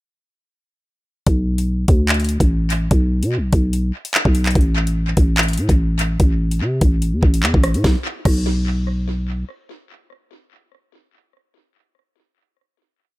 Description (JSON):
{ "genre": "hip hop, drill", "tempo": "146 BPM", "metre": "4/4", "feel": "half-time", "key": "B phrygian", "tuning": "A4 = 442 Hz", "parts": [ { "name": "growling 808-style bass", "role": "bass", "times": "1.3-9.4 s", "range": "A1 to C3", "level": "-18 LUFS", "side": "equal", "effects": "none" }, { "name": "drill drum kit", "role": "drums", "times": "1.3-8.4 s", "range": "crash cymbal, handclaps, hi-hat, kick drum, rim click, snare drum", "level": "-18 LUFS", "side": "equal", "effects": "tape echo" } ], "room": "little or no reverb", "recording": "echo-heavy mix", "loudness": "-16 LUFS", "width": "side -19 dB against mid", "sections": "1.3-7.8 hook; 7.8-11.1 final chord", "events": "none", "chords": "none" }